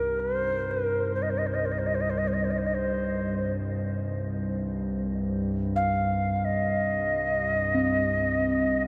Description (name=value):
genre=world meditative, free-time meditation music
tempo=free time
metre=none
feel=none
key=C minor pentatonic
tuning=A4 = 440 Hz
part: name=mellow Native American-style cedar flute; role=melody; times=0.0-8.8 s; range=Bb4 to F5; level=-30 LUFS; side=equal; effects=diffuse ambient delay
part: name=warbly tape-like pad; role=drone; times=0.0-8.9 s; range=C2 to G2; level=-32 LUFS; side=equal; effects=chorus, built-in reverb
part: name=bronze singing bowl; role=texture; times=0.0-2.1, 7.7-8.9 s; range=C4 to Eb4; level=-36 LUFS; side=equal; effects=none
room=wet huge ambient reverb, RT60 8.7 s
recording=dreamy mix soaked in reverb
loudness=-27 LUFS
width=mono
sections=0.0-8.9 A section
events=none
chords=none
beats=free time